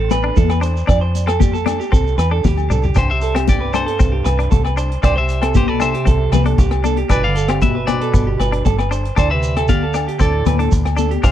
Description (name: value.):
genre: highlife guitar band.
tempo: 116 BPM.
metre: 4/4.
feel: straight.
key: C major.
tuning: A4 = 440 Hz.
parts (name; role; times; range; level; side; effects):
clean electric guitar; arpeggios; 0.0-11.3 s; G4 to D5; -22 LUFS; right 7 dB; tape echo.
deep dub fingered electric bass; bass; 0.0-11.3 s; G1 to F2; -19 LUFS; equal; none.
vintage drum kit; drums; 0.1-11.3 s; hi-hat, kick drum, rim click, snare drum, toms; -17 LUFS; equal; none.
agogo bells; percussion; 0.1-11.3 s; none; -28 LUFS; left 19 dB; none.
congas; percussion; 0.1-11.3 s; none; -24 LUFS; left 17 dB; none.
shekere; percussion; 0.1-11.3 s; none; -25 LUFS; right 2 dB; none.
clean electric guitar; accompaniment; 0.2-11.3 s; B3 to D4; -28 LUFS; left 6 dB; spring reverb.
clean electric guitar; melody; 3.0-11.3 s; G4 to F5; -23 LUFS; left 4 dB; none.
mellow bass clarinet; second line; 3.0-11.3 s; G2 to D3; -25 LUFS; right 3 dB; none.
room: little or no reverb.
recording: dry, close 1970s-style studio recording.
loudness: -14 LUFS.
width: side -11 dB against mid.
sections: 0.0-3.0 A section; 3.0-11.3 B section.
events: drum fill 2.4-3.0.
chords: 0.0 D5; 0.9 F; 3.0 C; 7.1 G; 9.2 Dm7.